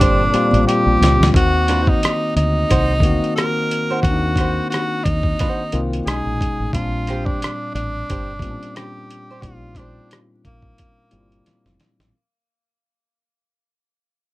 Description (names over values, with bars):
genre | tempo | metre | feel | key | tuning
R&B, neo-soul | 89 BPM | 4/4 | swing 57% on 16ths | Bb major | A4 = 439 Hz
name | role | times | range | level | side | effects
breathy tenor saxophone | melody | 0.0-11.8 s | Bb3 to Bb4 | -22 LUFS | equal | none
flamenco guitar | second line | 0.0-10.1 s | D4 to C5 | -25 LUFS | right 3 dB | none
barky tine electric piano | accompaniment | 0.0-12.1 s | Bb2 to Gb4 | -23 LUFS | left 2 dB | none
mellow horn section | stabs | 0.0-1.0 s | G2 to D4 | -28 LUFS | right 4 dB | none
deep dub fingered electric bass | bass | 0.0-12.1 s | F1 to Eb2 | -20 LUFS | equal | none
dusty soul sampler-style drum kit | drums | 0.0-12.1 s | hi-hat, kick drum, rim click, snare drum | -20 LUFS | equal | overdrive
congas | percussion | 0.5-1.2 s | none | -27 LUFS | right 4 dB | none
room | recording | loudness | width
light reverb | dark, warm production, vinyl crackle | -16 LUFS | side -18 dB against mid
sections
0.0-1.3 A section; 1.3-12.1 B section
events
drum fill 0.7-1.3, 11.4-12.1; fade-out 1.3-12.1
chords
0.0 Bb69; 1.3 Ebm6; 6.1 B69; 6.7 Bb69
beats
0.66 | 1.33 2.01 2.68 3.36 | 4.03 4.71 5.38 6.05 | 6.73 7.40 8.08 8.75 | 9.43 10.10 10.77 11.45